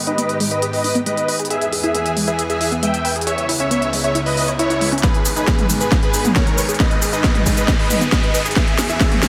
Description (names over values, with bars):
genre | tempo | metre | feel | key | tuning
uplifting trance | 136 BPM | 4/4 | straight | G# harmonic minor | A4 = 440 Hz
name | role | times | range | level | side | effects
lush unison pad | sustained chords | 0.0-9.3 s | C#2 to G#4 | -28 LUFS | equal | chorus, sidechain pumping
unison pluck | arpeggios | 0.0-9.3 s | G#3 to C#5 | -27 LUFS | equal | sidechain pumping, tape echo
riser | sound effects | 1.8-9.3 s | none | -31 LUFS | equal | none
big supersaw lead | melody | 0.1-9.2 s | E4 to G5 | -24 LUFS | equal | sidechain pumping, low-pass filter, tape echo
techno drum kit | drums | 0.1-9.3 s | hi-hat, shaker, snare drum, toms | -24 LUFS | equal | none
electronic kick drum | drums | 5.0-9.1 s | none | -20 LUFS | equal | none
room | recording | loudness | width
moderate lush hall reverb, RT60 2.2 s | none | -18 LUFS | mono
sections
0.0-9.3 A section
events
build-up 0.0-9.3; filter sweep on supersaw synth 0.0-9.3; filter sweep on synth pluck 0.0-9.3; riser 1.8-9.3; drum fill 5.0-9.3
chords
0.0 G#m; 1.5 E; 3.3 C#m7; 5.0 G#m; 8.6 E